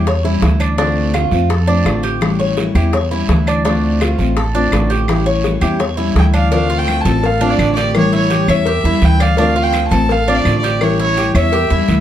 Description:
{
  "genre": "latin, Cuban son and guajira",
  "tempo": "168 BPM",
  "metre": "4/4",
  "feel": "straight",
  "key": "D minor",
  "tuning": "A4 = 440 Hz",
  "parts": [
    { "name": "picked steel-string acoustic guitar", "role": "accompaniment", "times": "0.0-12.0 s", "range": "D3 to F4", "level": "-18 LUFS", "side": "left 3 dB", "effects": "none" },
    { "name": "Cuban tres", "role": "arpeggios", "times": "0.0-12.0 s", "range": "D4 to D5", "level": "-20 LUFS", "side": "right 3 dB", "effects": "none" },
    { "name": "upright bass", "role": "bass", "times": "0.0-12.0 s", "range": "A1 to F2", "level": "-16 LUFS", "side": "right 1 dB", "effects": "none" },
    { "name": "bongos and cowbell", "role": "percussion", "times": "0.1-12.0 s", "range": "none", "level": "-23 LUFS", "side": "left 5 dB", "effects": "none" },
    { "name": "guiro", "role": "percussion", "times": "0.1-12.0 s", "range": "none", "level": "-30 LUFS", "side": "right 7 dB", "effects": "none" },
    { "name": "claves", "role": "percussion", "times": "0.6-11.5 s", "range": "none", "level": "-28 LUFS", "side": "left 2 dB", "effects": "none" },
    { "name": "warm violin", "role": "melody", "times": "6.2-12.0 s", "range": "C#5 to A5", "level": "-18 LUFS", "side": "equal", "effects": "none" }
  ],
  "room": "light reverb",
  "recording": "dark, warm production",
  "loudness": "-12 LUFS",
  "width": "side -11 dB against mid",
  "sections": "0.0-6.5 A section; 6.5-12.0 B section",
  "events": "none",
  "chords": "0.0 A7 (rootless); 0.8 Dm7; 2.2 A7; 3.7 Dm7; 5.1 A7; 6.5 Dm7; 8.0 A7; 9.4 Dm7; 10.8 A7"
}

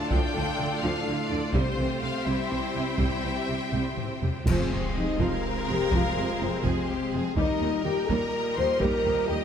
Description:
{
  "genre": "cinematic, epic orchestral film score",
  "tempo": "83 BPM (dotted quarters)",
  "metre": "6/8",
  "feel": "straight",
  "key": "F minor from 4.5 s",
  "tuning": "A4 = 441 Hz",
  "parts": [
    { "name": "clear symphonic violin section", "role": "melody", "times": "0.0-9.4 s", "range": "C5 to C6", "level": "-36 LUFS", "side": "left 3 dB", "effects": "none" },
    { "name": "clear symphonic violin section", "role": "second line", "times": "0.0-9.4 s", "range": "E4 to C5", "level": "-35 LUFS", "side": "left 3 dB", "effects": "none" },
    { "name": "warm symphonic viola section", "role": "accompaniment", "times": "0.0-9.4 s", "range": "C3 to D4", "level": "-34 LUFS", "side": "right 1 dB", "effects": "none" },
    { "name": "dark French horn section", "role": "sustained chords", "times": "0.0-9.4 s", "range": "C4 to C5", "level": "-30 LUFS", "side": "left 3 dB", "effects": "none" },
    { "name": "dark trombone section", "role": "sustained chords", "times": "0.0-9.4 s", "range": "A2 to A3", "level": "-37 LUFS", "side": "right 2 dB", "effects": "none" },
    { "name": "rich symphonic string section", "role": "sustained chords", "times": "0.0-9.4 s", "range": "G3 to G5", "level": "-35 LUFS", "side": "equal", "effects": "none" },
    { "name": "rich symphonic cello section", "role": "bass", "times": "0.1-9.4 s", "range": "Eb2 to D3", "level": "-34 LUFS", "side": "right 2 dB", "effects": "none" },
    { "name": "rich symphonic double bass section", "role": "bass", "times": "0.1-9.4 s", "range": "F1 to Eb2", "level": "-34 LUFS", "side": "right 3 dB", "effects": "none" },
    { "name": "taiko ensemble", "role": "drums", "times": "0.1-9.2 s", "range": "none", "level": "-31 LUFS", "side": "equal", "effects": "none" },
    { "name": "cymbal swell, clash cymbals and concert bass drum", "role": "percussion", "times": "1.5-5.4 s", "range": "none", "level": "-35 LUFS", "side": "equal", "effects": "none" }
  ],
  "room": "moderate scoring stage reverb, RT60 1.9 s",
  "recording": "none",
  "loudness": "-24 LUFS",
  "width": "side -8 dB against mid",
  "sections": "0.0-4.5 A section; 4.5-9.4 B section",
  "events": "drum fill 3.7-4.5; band accent 4.5-4.9",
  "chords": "0.0 Dm; 1.5 C; 4.5 Fm; 7.4 Eb"
}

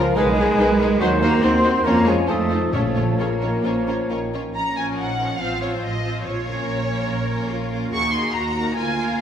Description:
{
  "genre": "quick classical-period movement for symphony orchestra",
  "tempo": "142 BPM",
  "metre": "4/4",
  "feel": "rubato",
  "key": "Bb minor",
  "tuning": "A4 = 439 Hz",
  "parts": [
    { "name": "rich studio violin section", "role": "melody", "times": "0.0-9.2 s", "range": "Cb5 to Db6", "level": "-27 LUFS", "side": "left 1 dB", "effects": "none" },
    { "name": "large flute ensemble", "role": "second line", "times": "0.0-4.3 s", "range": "F5 to C6", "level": "-27 LUFS", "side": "left 1 dB", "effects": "none" },
    { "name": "mellow clarinet", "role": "second line", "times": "0.0-4.3 s", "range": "Gb4 to C5", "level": "-28 LUFS", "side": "left 1 dB", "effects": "none" },
    { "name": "mellow cor anglais", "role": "second line", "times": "0.0-4.3 s", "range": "Bb4 to Eb5", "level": "-28 LUFS", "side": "equal", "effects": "none" },
    { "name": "rich studio violin section", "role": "second line", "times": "0.0-9.2 s", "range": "F4 to C5", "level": "-33 LUFS", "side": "left 3 dB", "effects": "none" },
    { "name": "mellow bassoon", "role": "accompaniment", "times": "0.0-4.5 s", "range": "Db3 to F3", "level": "-28 LUFS", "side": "right 2 dB", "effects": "none" },
    { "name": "rich studio viola section", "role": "accompaniment", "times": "0.0-9.2 s", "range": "F3 to F4", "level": "-29 LUFS", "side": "right 1 dB", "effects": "none" },
    { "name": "dark French horn section", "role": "sustained chords", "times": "0.0-4.3 s", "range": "Db4 to Bb4", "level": "-26 LUFS", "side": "left 3 dB", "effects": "none" },
    { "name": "rich studio cello section", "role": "bass", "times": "0.0-9.2 s", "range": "F3 to Bb4", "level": "-24 LUFS", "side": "right 1 dB", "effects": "none" },
    { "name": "warm studio double bass section", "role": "bass", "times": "0.0-9.2 s", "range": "A1 to F2", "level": "-26 LUFS", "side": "right 1 dB", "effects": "none" },
    { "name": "timpani", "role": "percussion", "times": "2.7-3.4, 6.2-6.8 s", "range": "Bb2", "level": "-29 LUFS", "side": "left 1 dB", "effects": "none" }
  ],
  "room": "wet recital hall reverb, RT60 1.3 s",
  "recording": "none",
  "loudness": "-18 LUFS",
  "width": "side -9 dB against mid",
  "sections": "0.0-4.6 A section; 4.6-9.2 B section",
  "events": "none",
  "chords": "0.2 Abm/Cb; 1.0 Cdim/Eb; 1.9 Bbm/F; 2.3 F7; 2.7 Bbm; 5.4 F7/A; 6.2 Bbm; 7.9 Ebm"
}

